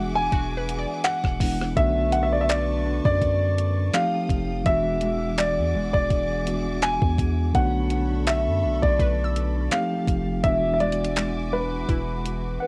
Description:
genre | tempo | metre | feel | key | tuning
contemporary R&B | 83 BPM | 4/4 | swing 54% on 16ths | unclear | A4 = 440 Hz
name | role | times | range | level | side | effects
warm baby grand piano | melody | 0.0-12.7 s | B4 to G#5 | -28 LUFS | equal | cassette tape, tape echo
mellow tine electric piano | accompaniment | 0.0-12.7 s | D3 to F#5 | -31 LUFS | equal | cassette tape
warm studio string section | sustained chords | 0.0-12.7 s | D4 to Eb6 | -41 LUFS | equal | cassette tape
nylon-string guitar | arpeggios | 0.0-12.7 s | E3 to C#5 | -37 LUFS | equal | none
long sustained 808-style bass | bass | 0.0-12.6 s | E1 to F#2 | -29 LUFS | equal | none
crisp 8-bit digital drum machine | drums | 0.3-12.4 s | handclaps, hi-hat, kick drum, rim click | -28 LUFS | equal | overdrive, cassette tape
glassy wavetable pluck | texture | 0.3-2.5, 9.0-12.7 s | E4 to E6 | -38 LUFS | equal | chorus, cassette tape, tape echo
room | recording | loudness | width
light reverb | home recording on cassette | -23 LUFS | mono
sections
0.0-12.7 A section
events
none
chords
0.0 E9; 1.8 Bm9; 3.9 F9; 4.7 E9; 7.5 Bm9; 9.7 F9; 10.4 E9

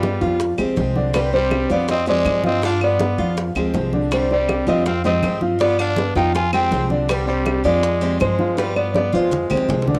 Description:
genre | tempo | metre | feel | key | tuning
latin, Cuban son and guajira | 161 BPM | 4/4 | straight | unclear | A4 = 440 Hz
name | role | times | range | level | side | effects
nylon-string guitar | melody | 0.0-9.9 s | B4 to Ab5 | -24 LUFS | equal | none
growling trumpet | second line | 0.0-9.9 s | G3 to F4 | -30 LUFS | equal | cassette tape
picked steel-string acoustic guitar | accompaniment | 0.0-10.0 s | C3 to G4 | -28 LUFS | equal | cassette tape
dark baby grand piano | arpeggios | 0.0-10.0 s | D3 to F5 | -26 LUFS | equal | cassette tape
upright bass | bass | 0.0-10.0 s | C2 to G2 | -26 LUFS | equal | none
bongos | percussion | 0.0-10.0 s | none | -31 LUFS | equal | none
congas | percussion | 0.0-10.0 s | none | -30 LUFS | equal | none
claves | percussion | 0.6-9.7 s | none | -31 LUFS | equal | none
room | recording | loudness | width
light reverb, small room ambience | home recording on cassette | -19 LUFS | mono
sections
0.0-10.0 A section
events
drum fill 9.0-10.0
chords
0.4 Fmadd9; 1.1 Csus2; 1.9 Fmadd9; 2.6 G7; 3.4 Fmadd9; 4.1 Csus2; 4.9 Fmadd9; 5.6 G7; 6.3 Fmadd9; 7.1 Csus2; 7.8 Fmadd9; 8.6 G7; 9.3 Fmadd9

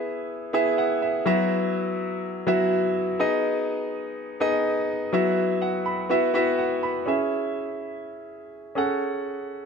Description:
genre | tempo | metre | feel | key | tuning
pop | 124 BPM | 4/4 | straight | E major | A4 = 441 Hz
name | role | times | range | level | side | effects
clear concert grand piano | solo | 0.0-9.7 s | F#3 to B5 | -23 LUFS | equal | none
room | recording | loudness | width
wet plate reverb, RT60 2.6 s | none | -22 LUFS | side -6 dB against mid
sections
0.0-7.1 A section; 7.1-9.7 B section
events
none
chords
0.0 E; 1.3 Bsus4/F#; 3.2 G#m; 5.1 Bsus4/F#; 6.1 Esus2; 7.1 C#m; 8.8 F#madd9

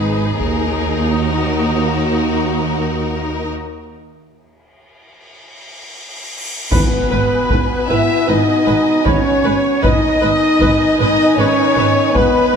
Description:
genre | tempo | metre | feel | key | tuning
cinematic, epic orchestral film score | 77 BPM | 4/4 | straight | G# minor from 6.7 s | A4 = 441 Hz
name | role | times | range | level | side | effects
warm symphonic violin section | melody | 0.0-12.2 s | A#4 to B4 | -27 LUFS | left 4 dB | none
rich chamber violin section | second line | 0.0-12.6 s | F#4 to E5 | -23 LUFS | left 4 dB | none
warm symphonic viola section | accompaniment | 0.0-12.6 s | D#4 to B4 | -24 LUFS | equal | none
mellow French horn section | sustained chords | 0.0-12.6 s | A#3 to F#4 | -18 LUFS | left 1 dB | none
warm studio cello section | bass | 0.0-12.6 s | D#2 to G#2 | -23 LUFS | right 3 dB | none
warm symphonic double bass section | bass | 0.0-12.2 s | G#1 to D#2 | -22 LUFS | right 4 dB | none
solo taiko drums | drums | 0.4-1.9, 6.7-12.6 s | none | -20 LUFS | equal | none
cymbal swell and impact | sound effects | 5.5-9.8 s | none | -27 LUFS | equal | none
silver concert flute | second line | 6.7-12.6 s | B4 to E5 | -25 LUFS | left 1 dB | none
warm symphonic string section | sustained chords | 6.7-12.6 s | B3 to G#5 | -26 LUFS | equal | none
warm trombone section | sustained chords | 6.7-12.6 s | B2 to D#4 | -25 LUFS | right 5 dB | none
clear trumpet section | stabs | 6.7-12.6 s | B4 to E5 | -21 LUFS | equal | none
room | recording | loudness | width
wet scoring stage reverb, RT60 1.7 s | none | -13 LUFS | side -6 dB against mid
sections
0.0-6.7 A section; 6.7-12.6 B section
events
build-up 0.0-6.7; break 3.5-6.7; cymbal swell 5.5-6.7; impact 6.7-9.8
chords
0.4 D#m; 6.7 G#m

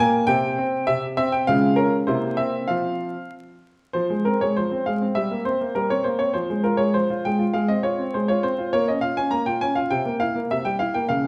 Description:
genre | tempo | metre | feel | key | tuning
classical-period piano sonatina | 101 BPM | 2/4 | straight | F minor | A4 = 441 Hz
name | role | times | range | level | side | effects
bright baby grand piano | solo | 0.0-11.3 s | C3 to Bb5 | -22 LUFS | equal | none
room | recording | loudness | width
wet recital hall reverb, RT60 1.4 s | dark, warm production, vinyl crackle | -23 LUFS | mono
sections
0.0-3.9 A section; 3.9-11.3 A section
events
none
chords
0.3 C5; 1.5 Db; 2.1 C7; 2.7 F5; 3.9 Fm; 5.1 C5/G; 6.3 Fm; 7.5 Fm/Ab; 8.7 Bbm7; 9.9 C7

